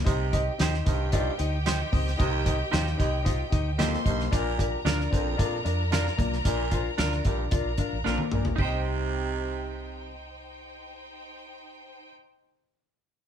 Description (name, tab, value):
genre	uptempo 1960s-style soul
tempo	113 BPM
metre	4/4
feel	straight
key	C minor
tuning	A4 = 440 Hz
part	warm upright piano	accompaniment	0.0-12.1 s	D4 to F5	-33 LUFS	left 3 dB	none
part	mellow electric guitar	riff	0.0-10.1 s	Bb3 to G4	-35 LUFS	left 8 dB	none
part	vintage muted fingered electric bass	bass	0.0-12.1 s	A1 to Bb2	-30 LUFS	equal	none
part	bright studio violin section	second line	0.1-12.1 s	Eb4 to C6	-37 LUFS	left 1 dB	none
part	raspy baritone saxophone	riff	0.1-10.1 s	Eb2 to C3	-35 LUFS	right 7 dB	none
part	warm soul drum kit	drums	0.1-8.7 s	hi-hat, kick drum, snare drum, toms	-28 LUFS	right 1 dB	none
part	semi-hollow electric guitar	stabs	0.6-12.2 s	D4 to C5	-34 LUFS	right 6 dB	spring reverb
room	moderate studio reverb, RT60 0.8 s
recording	band playing live in one room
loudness	-24 LUFS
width	side -9 dB against mid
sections	0.1-8.6 A section; 8.6-12.8 B section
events	drum fill 8.1-8.6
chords	0.1 Cm; 4.3 Bb; 8.6 Cm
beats	| 0.06 0.59 1.13 1.66 | 2.19 2.73 3.26 3.79 | 4.32 4.86 5.39 5.92 | 6.46 6.99 7.52 8.05 | 8.59 9.12 9.65 10.18 | 10.71 11.25 11.78